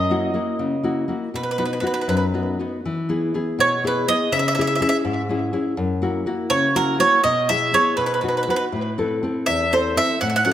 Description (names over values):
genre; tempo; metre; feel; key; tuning
italian folk, Italian serenade; 81 BPM (dotted quarters); 6/8; straight; E major; A4 = 440 Hz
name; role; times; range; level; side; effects
bowl-back mandolin; melody; 0.0-10.5 s; A#4 to F#5; -20 LUFS; right 2 dB; tape echo
nylon-string guitar; accompaniment; 0.0-10.5 s; E2 to A4; -22 LUFS; left 2 dB; none
room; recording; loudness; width
moderate recital hall reverb, RT60 1.7 s; none; -18 LUFS; side -11 dB against mid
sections
0.0-2.8 A section; 2.8-10.5 B section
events
none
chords
0.0 F#7; 1.3 B; 2.8 E; 4.3 C#m; 5.8 F#7; 7.2 E/B; 8.0 B; 8.7 Am